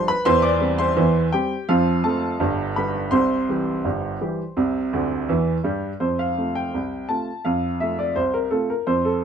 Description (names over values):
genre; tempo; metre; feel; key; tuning
ragtime piano; 84 BPM; 2/4; straight; C major, F major from 6.0 s; A4 = 440 Hz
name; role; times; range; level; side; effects
clear upright piano; solo; 0.0-9.2 s; G1 to D6; -19 LUFS; right 1 dB; none
room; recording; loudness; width
wet studio reverb, RT60 0.5 s; minimal, uncompressed stereo recording; -20 LUFS; side -7 dB against mid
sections
0.0-6.0 A section; 6.0-9.2 B section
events
upright piano fill 4.9-6.0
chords
0.3 C/E; 1.7 F; 2.4 G; 3.1 C; 6.0 F